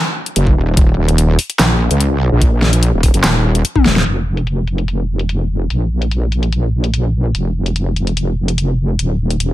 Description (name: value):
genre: heavy wobble dubstep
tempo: 146 BPM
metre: 4/4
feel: half-time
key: unclear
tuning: A4 = 440 Hz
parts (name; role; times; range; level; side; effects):
- dubstep drum kit; drums; 0.3-9.5 s; handclaps, hi-hat, snare drum, toms; -17 LUFS; left 2 dB; overdrive, low-pass filter on snare, low-pass filter on hats, low-pass filter on toms
- wobble bass; bass; 0.4-9.5 s; Eb1 to Db2; -14 LUFS; equal; chorus, overdrive
- electronic kick drum; drums; 0.5-3.8 s; none; -12 LUFS; equal; overdrive
room: little or no reverb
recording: none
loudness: -13 LUFS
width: side -15 dB against mid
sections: 0.0-4.1 A section; 4.1-9.5 B section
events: drop 0.0-4.1; drum fill 3.8-4.1; filter sweep on drum 4.1-9.5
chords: none